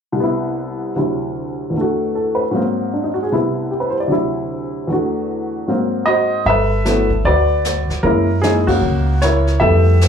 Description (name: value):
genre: jazz piano trio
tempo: 152 BPM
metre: 4/4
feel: swing 64% on 8ths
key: G major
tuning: A4 = 442 Hz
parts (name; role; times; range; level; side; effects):
- warm upright piano; melody; 0.1-10.1 s; C2 to E5; -16 LUFS; left 1 dB; slapback echo
- upright bass; bass; 6.5-10.1 s; G1 to F#2; -16 LUFS; equal; none
- jazz brush drum kit; drums; 6.5-10.1 s; brushed snare drum, hi-hat, kick drum, ride cymbal, snare drum; -26 LUFS; equal; none
room: moderate club reverb, RT60 0.5 s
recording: live gig heard through the venue's PA, club reverb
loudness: -15 LUFS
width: side -7 dB against mid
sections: 0.2-6.5 A section; 6.5-10.1 B section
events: band accent 8.6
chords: 0.2 Cmaj7; 1.0 D9; 1.7 E9sus4; 2.5 Ab9; 3.3 Cmaj7; 4.1 D9; 4.9 E9sus4; 5.7 Ab9; 6.5 Gmaj13; 8.0 F#9